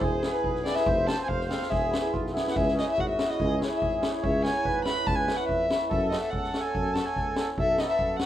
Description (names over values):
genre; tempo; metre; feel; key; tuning
klezmer; 143 BPM; 2/4; straight; C# minor; A4 = 440 Hz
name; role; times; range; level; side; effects
dark violin; melody; 0.0-8.3 s; B4 to B5; -28 LUFS; left 1 dB; none
accordion; second line; 0.0-8.3 s; E4 to C#5; -33 LUFS; right 4 dB; light tremolo tuning
mellow tuba; bass; 0.0-8.2 s; E1 to F#2; -32 LUFS; equal; none
street-band drum kit; drums; 0.0-8.3 s; kick drum, snare drum; -31 LUFS; equal; none
cimbalom; accompaniment; 0.2-8.3 s; B3 to C#5; -33 LUFS; left 1 dB; none
room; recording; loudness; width
moderate studio ambience, RT60 0.5 s; minimal, uncompressed stereo recording; -24 LUFS; side -12 dB against mid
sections
0.0-2.6 A section; 2.6-8.3 B section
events
speeding up 0.0-8.3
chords
0.0 E; 0.9 F; 1.7 E; 2.6 C#m; 5.9 F#m; 7.6 B